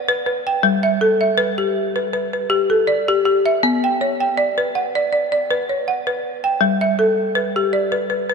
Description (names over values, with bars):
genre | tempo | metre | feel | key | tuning
world meditative, meditative tuned percussion | 80 BPM | 4/4 | swing 54% on 16ths | unclear | A4 = 440 Hz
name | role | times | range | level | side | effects
folk marimba with hard mallets | solo | 0.0-8.3 s | G3 to G5 | -16 LUFS | equal | none
room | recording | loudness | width
wet cathedral reverb, RT60 4.6 s | none | -16 LUFS | side -5 dB against mid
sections
0.0-8.3 A section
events
none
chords
0.0 B5; 0.6 G; 3.6 Bm; 6.6 G